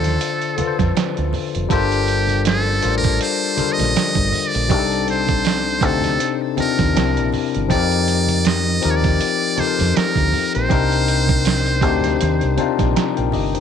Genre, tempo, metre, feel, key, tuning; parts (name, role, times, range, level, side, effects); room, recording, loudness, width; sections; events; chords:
R&B, neo-soul; 80 BPM; 4/4; swing 56% on 16ths; C dorian; A4 = 440 Hz
trumpet with metal mute; melody; 0.0-12.8 s; G4 to Eb5; -22 LUFS; right 2 dB; tape echo
barky tine electric piano; accompaniment; 0.0-13.6 s; C3 to Bb5; -21 LUFS; left 12 dB
deep dub fingered electric bass; bass; 0.0-13.6 s; F1 to F2; -21 LUFS; right 1 dB
dusty soul sampler-style drum kit; drums; 0.0-13.6 s; hi-hat, kick drum, snare drum; -22 LUFS; right 6 dB
congas; percussion; 0.0-13.5 s; -30 LUFS; right 9 dB
light reverb; 1960s-style stereo with parts hard left and right; -16 LUFS; side -8 dB against mid
0.0-13.6 A section
0.0 Dm7; 1.7 Gm11; 4.7 Cm69; 6.9 C9; 7.7 F7sus4; 10.7 Cm9